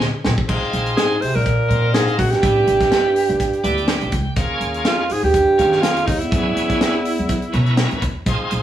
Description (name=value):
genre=electric jazz fusion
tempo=123 BPM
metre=4/4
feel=swing 55% on 16ths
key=unclear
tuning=A4 = 440 Hz
part: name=bright tonewheel organ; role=accompaniment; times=0.0-8.6 s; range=Bb3 to G5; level=-24 LUFS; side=right 1 dB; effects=slow rotary speaker, overdrive
part: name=upright bass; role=bass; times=0.0-8.6 s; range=A1 to Eb3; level=-22 LUFS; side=equal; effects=none
part: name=tight funk drum kit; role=drums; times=0.0-8.6 s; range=crash cymbal, hi-hat, kick drum, snare drum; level=-22 LUFS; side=equal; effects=none
part: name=congas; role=percussion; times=0.0-0.4, 8.3 s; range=none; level=-29 LUFS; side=left 3 dB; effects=none
part: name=bright alto saxophone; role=melody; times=1.0-8.0 s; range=Eb4 to C5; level=-18 LUFS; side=right 2 dB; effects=none
part: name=mellow bass clarinet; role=second line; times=1.0-8.0 s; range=Eb2 to C3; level=-25 LUFS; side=left 1 dB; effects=none
room=moderate studio reverb, RT60 0.8 s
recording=band playing live in one room, studio reverb, faint mains hum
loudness=-16 LUFS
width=side -11 dB against mid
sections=0.5-8.6 A section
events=drum fill 0.0-0.5; tonewheel organ fill 3.4-4.4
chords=0.5 Bb9sus4; 2.4 A9sus4; 4.4 Eb9sus4; 6.3 Gb9sus4